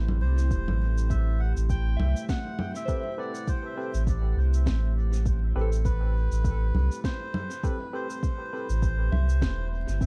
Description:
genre	ambient dub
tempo	101 BPM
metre	4/4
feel	swing 57% on 16ths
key	A minor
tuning	A4 = 440 Hz
part	deep dark ambient pad	sustained chords	0.0-10.1 s	A3 to B5	-42 LUFS	equal	chorus, built-in reverb
part	warm sub bass	bass	0.0-10.1 s	E1 to C2	-26 LUFS	equal	tube saturation
part	electronic congas, shaker and snare drum	drums	0.1-10.1 s	none	-38 LUFS	equal	small room ambience, dub echo
part	melodica	melody	0.2-9.7 s	B4 to G5	-40 LUFS	equal	tape echo
part	electronic kick drum	drums	0.5-10.1 s	none	-31 LUFS	equal	small room ambience
part	soft synth bell	arpeggios	2.0-10.1 s	C4 to E5	-43 LUFS	equal	chorus, phaser, tape echo
part	barky tine electric piano	stabs	2.9-8.7 s	C4 to B4	-41 LUFS	equal	overdrive, dub echo
room	little or no reverb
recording	echo-heavy mix, vinyl crackle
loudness	-27 LUFS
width	mono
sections	0.0-10.1 A section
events	none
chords	0.0 Am9

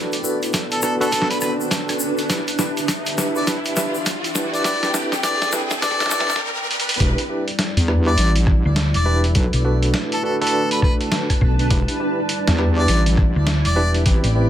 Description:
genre	glitch hop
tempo	102 BPM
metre	4/4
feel	swing 62% on 16ths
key	E minor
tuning	A4 = 440 Hz
part	dark analog pad	sustained chords	0.0-14.5 s	G3 to G5	-29 LUFS	right 1 dB	chorus, sidechain pumping
part	tine electric piano	stabs	0.0-14.5 s	C4 to B4	-25 LUFS	right 1 dB	medium tremolo, sidechain pumping, digital delay
part	riser	sound effects	0.1-7.0 s	none	-28 LUFS	equal	none
part	granular cloud pad	texture	0.0-14.5 s	C4 to A5	-28 LUFS	right 1 dB	built-in reverb, sidechain pumping
part	boom bap sampler-style drum kit	drums	0.1-14.3 s	hi-hat, rim click, snare drum	-23 LUFS	equal	none
part	egg shaker	percussion	0.1-6.4 s	none	-30 LUFS	left 3 dB	none
part	electronic kick drum	drums	0.5-14.2 s	none	-19 LUFS	equal	high-pass filter on kick, high-pass filter on room
part	warm harmonica	melody	0.7-13.9 s	A4 to D5	-24 LUFS	left 1 dB	digital delay
part	wobble bass	bass	7.0-14.2 s	E1 to E2	-18 LUFS	equal	chorus
part	hollow-body short-scale fingered electric bass	bass	8.7-14.5 s	E1 to D2	-18 LUFS	equal	none
room	light reverb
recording	high-pass filter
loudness	-17 LUFS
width	side -11 dB against mid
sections	0.0-7.0 A section; 7.0-14.5 B section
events	build-up 0.0-7.0; drum fill 0.0-6.4, 6.7; riser 0.1-7.0; stop 6.4-7.0; drop 7.0-14.5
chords	0.0 Bm7; 2.3 Em7; 4.7 Am7; 7.0 Em7; 9.4 Bm7; 11.7 Em7

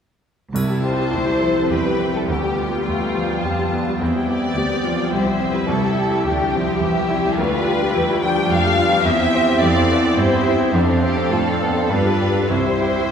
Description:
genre	classical, romantic movement for piano and orchestra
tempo	106 BPM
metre	3/4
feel	rubato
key	C major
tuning	A4 = 439 Hz
part	clear concert grand piano	melody	0.5-13.1 s	C2 to C5	-21 LUFS	left 1 dB	none
part	rich studio viola section	accompaniment	0.5-13.1 s	G3 to A4	-26 LUFS	right 2 dB	none
part	mellow French horn section	sustained chords	0.5-13.1 s	G3 to F4	-25 LUFS	left 1 dB	none
part	warm studio cello section	bass	0.5-13.1 s	C2 to C3	-25 LUFS	right 2 dB	none
part	rich studio violin section	melody	0.6-13.1 s	E5 to A5	-31 LUFS	left 4 dB	none
part	triangle	percussion	0.6-1.7 s	none	-38 LUFS	left 2 dB	none
part	rich studio violin section	second line	0.8-13.1 s	F4 to G5	-22 LUFS	left 2 dB	none
room	wet concert hall reverb, RT60 2.1 s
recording	recorded in a church or concert hall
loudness	-16 LUFS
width	side -7 dB against mid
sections	0.5-13.1 A section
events	none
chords	0.5 C; 2.3 G7/D; 4.0 C; 7.4 G7/D; 9.1 C/E; 10.7 Dm7/F; 11.9 G7; 12.5 C

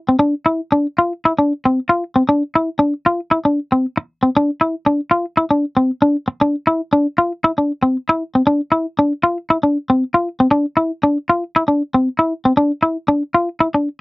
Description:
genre	highlife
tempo	116 BPM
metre	4/4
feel	straight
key	unclear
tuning	A4 = 435 Hz
part	clean electric guitar	solo	0.1-13.9 s	C4 to F4	-14 LUFS	left 1 dB	none
room	light reverb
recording	dry, close 1970s-style studio recording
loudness	-15 LUFS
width	side -25 dB against mid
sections	0.2-14.0 A section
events	none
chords	none

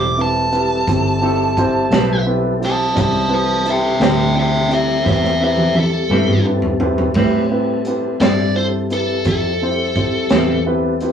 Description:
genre	slow blues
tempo	57 BPM (dotted quarters)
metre	12/8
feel	straight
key	A minor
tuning	A4 = 440 Hz
part	biting lead guitar	melody	0.0-10.6 s	A4 to D6	-18 LUFS	equal	overdrive
part	clean electric guitar	accompaniment	0.0-10.5 s	A2 to E4	-22 LUFS	right 1 dB	tremolo
part	dark grand piano	accompaniment	0.0-11.1 s	C4 to D5	-20 LUFS	equal	none
part	tonewheel organ	sustained chords	0.0-11.1 s	G3 to Bb4	-26 LUFS	left 2 dB	chorus vibrato, slow rotary speaker
part	vintage muted fingered electric bass	bass	0.0-11.1 s	E1 to A2	-21 LUFS	equal	none
part	crunchy breakbeat drum kit	drums	0.5-11.1 s	crash cymbal, hi-hat, kick drum, snare drum, toms	-19 LUFS	equal	none
room	moderate booth ambience, RT60 0.2 s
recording	rough rehearsal-room recording, tube saturation, small room ambience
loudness	-14 LUFS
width	side -8 dB against mid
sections	0.0-7.2 A section; 7.2-11.1 B section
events	lead electric guitar solo 0.0-7.2; drum fill 5.1-7.2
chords	0.0 Am7

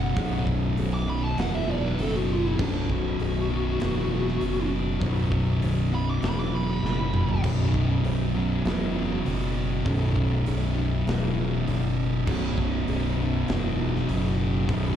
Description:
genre	stoner and doom metal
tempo	99 BPM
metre	4/4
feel	straight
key	unclear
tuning	A4 = 436 Hz
part	fuzz lead guitar	melody	0.0-7.4 s	D4 to D6	-32 LUFS	left 1 dB	distortion, slapback echo, tape echo
part	thick fuzz guitar	riff	0.0-15.0 s	B1 to B2	-28 LUFS	left 5 dB	distortion, slapback echo
part	thick fuzz guitar	riff	0.0-15.0 s	B1 to B2	-30 LUFS	right 12 dB	distortion
part	growling fingered electric bass	bass	0.0-15.0 s	B0 to F#1	-28 LUFS	equal	overdrive
part	big rock drum kit	drums	0.2-14.8 s	crash cymbal, hi-hat, kick drum, snare drum, toms	-32 LUFS	equal	none
room	little or no reverb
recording	live gig heard through the venue's PA, club reverb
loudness	-23 LUFS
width	side -10 dB against mid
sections	0.0-7.4 A section; 7.4-15.0 B section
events	lead electric guitar solo 0.0-7.4; drum fill 6.8-7.4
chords	0.0 B5

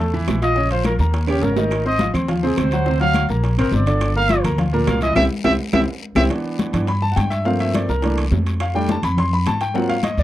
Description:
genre	Afro-Cuban jazz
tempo	209 BPM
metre	4/4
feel	straight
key	unclear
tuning	A4 = 444 Hz
part	clear grand piano	accompaniment	0.0-10.2 s	Bb2 to C6	-21 LUFS	equal	none
part	upright bass	bass	0.0-10.2 s	G1 to Ab2	-21 LUFS	equal	none
part	bongos	percussion	0.0-10.2 s	none	-30 LUFS	left 5 dB	none
part	congas	percussion	0.1-10.2 s	none	-26 LUFS	left 2 dB	none
part	claves	percussion	0.3-6.2 s	none	-34 LUFS	right 5 dB	none
part	guiro	percussion	0.3-10.2 s	none	-38 LUFS	left 8 dB	none
part	timbales	percussion	0.3-10.2 s	none	-30 LUFS	right 6 dB	none
part	warm trumpet	melody	0.4-6.2 s	G4 to F5	-21 LUFS	equal	none
room	little or no reverb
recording	dry, close 1970s-style studio recording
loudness	-16 LUFS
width	side -14 dB against mid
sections	0.0-6.3 A section; 6.3-10.2 A section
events	trumpet solo 0.0-6.3; drum fill 1.3-1.7, 5.2-6.3; band accent 5.2-6.3; grand piano solo 6.3-10.2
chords	0.0 A5; 0.6 Bbmadd11; 1.1 Eb5; 1.7 Ab6; 2.9 D7alt; 4.0 Gm7; 5.2 C; 6.3 G69; 7.5 Gm11; 8.0 C13; 8.6 F69

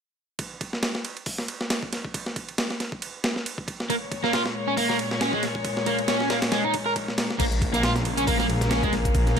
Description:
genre	breakbeat, breaks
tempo	137 BPM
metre	4/4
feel	swing 56% on 16ths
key	Bb minor pentatonic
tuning	A4 = 441 Hz
part	breakbeat sampler-style drum kit	drums	0.4-9.4 s	crash cymbal, hi-hat, kick drum, ride cymbal, snare drum	-27 LUFS	equal	high-pass filter on cymbals, high-pass filter on kick, high-pass filter on snare, high-pass filter on hats
part	rich chamber string section	sustained chords	3.9-9.4 s	Bb2 to Db5	-30 LUFS	left 3 dB	sidechain pumping
part	crunchy overdriven guitar	riff	3.9-9.4 s	Ab3 to Bb4	-25 LUFS	right 1 dB	tube saturation, tape echo
part	phased detuned saw bass	bass	7.4-9.4 s	Bb1	-26 LUFS	equal	phaser
part	electronic hi-hat	drums	7.4-9.3 s	none	-38 LUFS	left 4 dB	none
room	light reverb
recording	none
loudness	-23 LUFS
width	side -7 dB against mid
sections	0.4-7.4 A section; 7.4-9.4 B section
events	none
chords	0.4 Bbm7

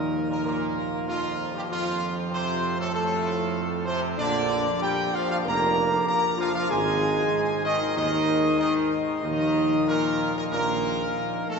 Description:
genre	classical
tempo	95 BPM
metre	4/4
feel	straight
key	Bb major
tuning	A4 = 440 Hz
part	warm trumpet section	melody	0.0-11.6 s	F4 to Bb5	-27 LUFS	equal	none
part	mellow French horn section	sustained chords	0.0-11.6 s	F3 to Bb4	-31 LUFS	left 2 dB	none
part	pipe organ, plenum	sustained chords	0.0-11.6 s	Bb2 to Eb5	-32 LUFS	right 1 dB	none
part	warm trombone section	sustained chords	0.0-11.6 s	F2 to Bb3	-30 LUFS	right 2 dB	none
part	dark tuba	bass	0.0-11.1 s	F1 to F2	-29 LUFS	equal	none
room	wet cathedral reverb, RT60 5.1 s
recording	recorded in a church or concert hall, nothing above 7.9 kHz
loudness	-22 LUFS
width	side -5 dB against mid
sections	0.0-11.6 A section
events	none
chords	0.0 Ebsus2; 1.7 F; 4.2 Bb; 6.7 Ab; 9.2 Ebsus2

